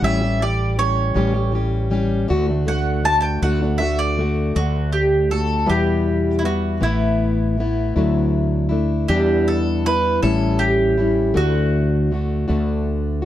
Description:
acoustic folk duo or small band; 53 BPM (dotted quarters); 6/8; straight; D major; A4 = 440 Hz
mandolin; melody; 0.0-12.8 s; E4 to A5; -22 LUFS; right 2 dB
picked plugged-in steel-string acoustic guitar; accompaniment; 0.0-13.3 s; E2 to G4; -21 LUFS; left 3 dB
fretless electric bass; bass; 0.0-13.3 s; A1 to E2; -21 LUFS; right 1 dB; lush chorus
light reverb; dark, warm production; -17 LUFS; side -12 dB against mid
0.0-4.6 A section; 4.6-13.3 B section
mandolin solo 0.0-4.6
0.0 A7; 2.3 D; 5.7 Em; 6.8 Asus2; 8.0 Dadd9; 9.1 Em7; 10.2 A7; 11.4 D

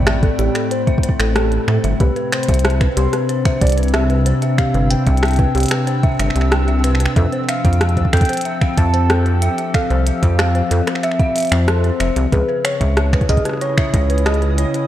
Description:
IDM; 93 BPM; 4/4; straight; A4 = 440 Hz
soft struck synth lead; melody; 0.0-14.9 s; A4 to A5; -24 LUFS; equal; chorus, phaser, vintage 12-bit sampler grit, digital delay
warbly tape-like pad; sustained chords; 0.0-14.9 s; A2 to E6; -22 LUFS; left 2 dB; chorus, built-in reverb
dark detuned synth bell; arpeggios; 0.0-14.9 s; G4 to G5; -25 LUFS; right 1 dB; chorus, tape echo
rubbery square bass; bass; 0.0-14.7 s; F1 to A2; -16 LUFS; equal
electronic kick drum; drums; 0.0-14.1 s; -16 LUFS; equal; overdrive, studio reverb
glitchy drum kit; drums; 0.1-14.9 s; finger snaps, hi-hat, rim click; -23 LUFS; equal; overdrive, studio reverb
light reverb, digital ambience; dark, warm production; -14 LUFS; side -12 dB against mid
0.0-14.9 A section
0.0 Am7; 2.0 Cmaj7; 7.2 Fmaj7; 12.3 C#m7

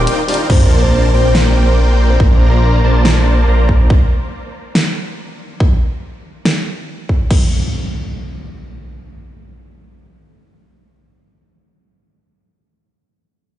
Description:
future bass; 141 BPM; 4/4; half-time; Bb major; A4 = 440 Hz
soft octave-layered synth lead; melody; 0.0-2.2 s; C5 to D6; -22 LUFS; left 1 dB; chorus, sidechain pumping, ping-pong delay
wide unison pluck; arpeggios; 0.0-0.5 s; G5; -33 LUFS; equal
dense compressed supersaw; riff; 0.0-3.9 s; Bb3 to Bb5; -19 LUFS; equal; sidechain pumping, low-pass filter, dub echo
wide detuned saw bass; bass; 0.0-3.9 s; Bb1; -12 LUFS; equal; chorus, sidechain pumping
big-room dance drum kit; drums; 0.1-7.4 s; crash cymbal, hi-hat, snare drum; -20 LUFS; equal; small room ambience
electronic kick drum; drums; 0.5-7.4 s; -12 LUFS; equal; small room ambience
sub drop and impact; sound effects; 0.5-2.2, 7.3-12.0 s; -21 LUFS; equal
digital ambience; played on a big sound system in a bare room, stone room reverb, nothing above 10.3 kHz; -11 LUFS; side -13 dB against mid
0.5-7.3 A section; 7.3-10.7 B section
break 0.1-0.5; impact 0.5-2.2
0.5 Bbmaj9; 3.9 N.C.

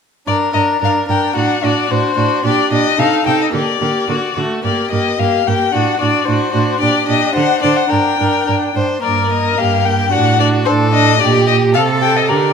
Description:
quick classical-period movement for string quartet; 110 BPM; 2/4; straight; G minor; A4 = 440 Hz
rich violin; melody; 0.3-12.5 s; C5 to G5; -17 LUFS; left 9 dB
clear violin; second line; 0.3-12.5 s; F#4 to C5; -19 LUFS; left 4 dB
rich viola; accompaniment; 0.3-12.5 s; A3 to A4; -18 LUFS; right 4 dB
rich cello; bass; 0.3-12.5 s; G2 to D3; -19 LUFS; right 5 dB
wet recital hall reverb, RT60 1.4 s; -12 LUFS; side -6 dB against mid
0.3-9.0 A section; 9.0-12.5 A section
0.3 Gm; 1.4 D7/A; 2.4 Gm/Bb; 3.0 Adim/C; 3.5 Gm/D; 4.1 D; 4.6 Gm; 5.7 D7/A; 6.8 Gm/Bb; 7.4 D7; 7.9 Gm; 10.1 D/A; 11.2 Gm/Bb; 11.7 Cm6

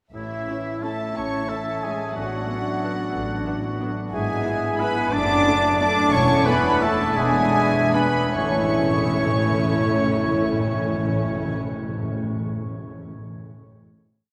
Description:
classical, orchestral ballroom waltz; 137-199 BPM; 3/4; rubato; A major; A4 = 440 Hz
warm symphonic violin section; melody; 0.1-11.6 s; E5 to D6; -33 LUFS; equal
clear clarinet; second line; 0.1-11.6 s; E4 to D5; -32 LUFS; equal
clear oboe; second line; 0.1-11.6 s; E4 to D5; -32 LUFS; equal
silver concert flute; second line; 0.1-11.6 s; C#5 to A5; -31 LUFS; equal
warm symphonic violin section; second line; 0.1-11.6 s; C#5 to D6; -34 LUFS; equal
dark French horn section; sustained chords; 0.1-11.6 s; A3 to E4; -32 LUFS; equal
concert harp; arpeggios; 0.1-12.5 s; E2 to E6; -33 LUFS; equal
rich symphonic double bass section; bass; 0.1-11.6 s; E1 to A1; -33 LUFS; equal
warm symphonic cello section; bass; 0.1-11.6 s; E3 to D4; -31 LUFS; equal
dark symphonic viola section; accompaniment; 0.5-11.6 s; A3 to E4; -33 LUFS; equal
timpani; percussion; 6.1-12.3 s; E2 to A2; -31 LUFS; equal
wet cathedral reverb, RT60 6.6 s; -22 LUFS; mono
0.1-8.4 A section; 8.4-10.8 final chord
slowing down 5.6-8.4
0.1 A; 2.2 Bm7/A; 4.1 E/G#; 5.1 D/F#; 6.1 A/E; 7.2 E7; 8.4 A

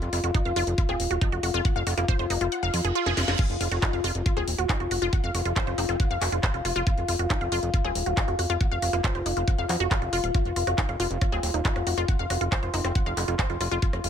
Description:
psychedelic trance; 138 BPM; 4/4; straight; A4 = 440 Hz
overtone-sweeping drone; sustained chords; 0.0-14.1 s; F4; -31 LUFS; left 3 dB; chorus, built-in reverb, sidechain pumping
fat analog bass; bass; 0.0-14.1 s; Eb1 to F2; -29 LUFS; equal
drum and bass drum kit; drums; 0.0-14.1 s; crash cymbal, handclaps, hi-hat, rim click, snare drum; -31 LUFS; left 1 dB
wide unison pluck; riff; 0.1-14.1 s; Eb4 to Gb5; -30 LUFS; moving between left 3 dB and right 5 dB; auto-pan, sidechain pumping, dub echo
electronic kick drum; drums; 0.3-13.9 s; -25 LUFS; equal
metallic wobble bass; second line; 0.9-13.8 s; Bb3 to F4; -41 LUFS; right 1 dB
reverse cymbal and riser; sound effects; 2.7-3.4, 13.8-14.1 s; -34 LUFS; right 7 dB
little or no reverb; -23 LUFS; side -8 dB against mid
0.0-14.1 A section
kick drops out 2.5-3.4; reverse cymbal 2.7-3.4; drum fill 3.1-3.4
0.0 F5

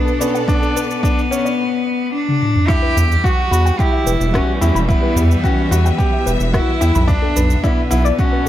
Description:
piano and strings electronica; 109 BPM; 4/4; straight; A4 = 440 Hz
rich cello; melody; 0.0-8.5 s; B3 to G4; -20 LUFS; left 1 dB; digital delay
rich symphonic string section; sustained chords; 0.0-8.5 s; B2 to E5; -25 LUFS; equal; sidechain pumping
warbly dusty pluck; arpeggios; 0.0-8.5 s; A4 to B5; -27 LUFS; left 4 dB; chorus, sidechain pumping, digital delay
bright grand piano; riff; 0.0-8.5 s; B3 to G4; -22 LUFS; left 1 dB; digital delay
deep house drum kit; drums; 0.1-8.3 s; rim click, shaker, toms; -22 LUFS; equal
electronic kick drum; drums; 0.5-8.3 s; -18 LUFS; equal
round analog bass; bass; 3.0-8.5 s; E1 to E2; -15 LUFS; equal; sidechain pumping
light reverb, digital ambience; -14 LUFS; side -12 dB against mid
0.0-2.7 A section; 2.7-8.5 B section
build-up 0.0-2.7; filter sweep on synth arpeggio sound 0.0-2.7; drum fill 2.3-2.7; drop 2.7-8.5
0.0 Bm7; 2.7 Em; 7.1 Bm7

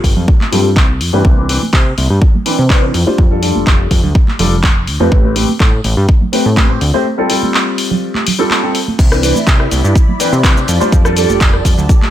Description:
filtered disco house; 124 BPM; 4/4; straight; C major; A4 = 440 Hz
clear grand piano; accompaniment; 0.0-12.1 s; E3 to C5; -16 LUFS; left 1 dB; phaser, sidechain pumping, low-pass filter
plucky analog bass; bass; 0.0-11.9 s; F1 to C3; -15 LUFS; equal; tube saturation, sidechain pumping, low-pass filter
electronic kick drum; drums; 0.0-12.0 s; -10 LUFS; equal
punchy analog drum machine; drums; 0.0-12.1 s; crash cymbal, handclaps, hi-hat, rim click, shaker; -17 LUFS; left 1 dB
tube shaker and congas; percussion; 0.0-12.1 s; -22 LUFS; right 4 dB; sidechain pumping on perc, low-pass filter on perc
phased string machine; sustained chords; 9.2-12.1 s; E4 to B5; -21 LUFS; right 1 dB; ensemble chorus, phaser, sidechain pumping, low-pass filter
little or no reverb; -10 LUFS; side -12 dB against mid
0.0-12.1 A section
filter sweep 0.0-12.1; break 7.1-9.0
0.0 G9sus4; 1.2 Cmaj9; 2.9 F69; 5.1 Am9; 7.1 G9sus4; 9.0 Cmaj9; 10.7 F69

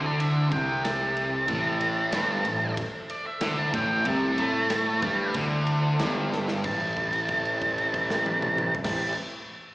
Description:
blues rock power trio and southern rock; 93 BPM; 4/4; straight; A minor; A4 = 444 Hz
octave-fuzz lead guitar; melody; 0.0-9.1 s; D5 to A5; -28 LUFS; right 1 dB; distortion
overdriven tonewheel organ; sustained chords; 0.0-9.1 s; C4 to E5; -37 LUFS; right 1 dB
fuzz guitar; riff; 0.0-6.6 s; G2 to A3; -27 LUFS; equal; distortion, slapback echo
fuzz picked electric bass; bass; 0.0-9.1 s; G1 to A2; -31 LUFS; equal; overdrive
big rock drum kit; drums; 0.2-9.0 s; crash cymbal, kick drum, ride cymbal, snare drum, toms; -34 LUFS; equal
light reverb; live gig heard through the venue's PA, recital hall reverb, small speaker sound; -24 LUFS; side -20 dB against mid
0.0-6.6 A section; 6.6-9.2 B section
lead electric guitar solo 0.0-6.6; drum fill 6.3-6.6; held note 6.6-8.8
0.0 Am; 6.6 Am7

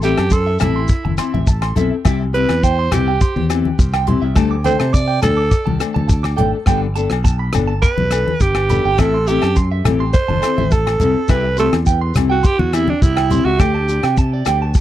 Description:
highlife guitar band; 104 BPM; 4/4; straight; A4 = 440 Hz
growling alto saxophone; melody; 0.0-14.2 s; D4 to D5; -20 LUFS; right 3 dB; tape echo
picked steel-string acoustic guitar; accompaniment; 0.0-14.6 s; G3 to A4; -20 LUFS; left 8 dB
electric guitar at the edge of break-up; arpeggios; 0.0-14.7 s; D5 to D6; -24 LUFS; right 9 dB; tape echo
modern bright fingered electric bass; bass; 0.0-14.7 s; F#1 to C3; -19 LUFS; equal
damped 70s drum kit; drums; 0.0-14.8 s; hi-hat, kick drum, rim click; -17 LUFS; equal
shekere; percussion; 0.0-14.8 s; -21 LUFS; left 2 dB
agogo bells; percussion; 0.2-14.6 s; -30 LUFS; left 22 dB
congas; percussion; 0.6-13.4 s; -21 LUFS; left 2 dB
little or no reverb; dry, close 1970s-style studio recording; -14 LUFS; side -13 dB against mid
0.0-14.8 A section
alto saxophone solo 0.0-14.8
0.0 Am; 2.1 C; 4.4 Dsus4; 6.7 Gadd9; 9.0 Am; 11.3 C; 13.6 Dsus4

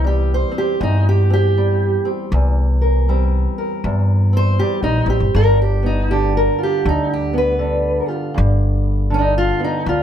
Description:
acoustic country blues, solo or duo; 80 BPM; 4/4; swing 63% on 8ths; A4 = 440 Hz
fingerpicked steel-string acoustic guitar; melody; 0.0-10.0 s; E2 to C5; -18 LUFS; right 1 dB; slapback echo
upright bass; bass; 0.0-10.0 s; G1 to G2; -17 LUFS; equal
little or no reverb; close, detailed microphones; -15 LUFS; side -9 dB against mid
0.0-10.0 A section
steel-string acoustic guitar solo 0.0-10.0
0.0 C7; 5.4 G7

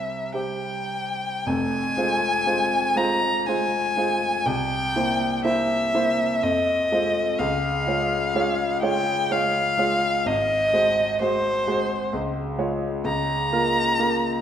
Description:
classical, romantic duo for violin and grand piano; 51-65 BPM; 3/4; rubato; F minor; A4 = 443 Hz
rich violin; melody; 0.0-14.4 s; C5 to Bb5; -23 LUFS; left 1 dB
clear concert grand piano; accompaniment; 0.0-14.4 s; F1 to Db5; -24 LUFS; equal
wet scoring stage reverb, RT60 1.8 s; -20 LUFS; side -9 dB against mid
0.0-1.5 A section; 1.5-14.4 B section
0.0 C; 1.5 Fm; 4.5 C7; 6.4 Fm; 7.4 Db; 10.3 Ab7; 12.1 Db; 13.1 Bbm/Db

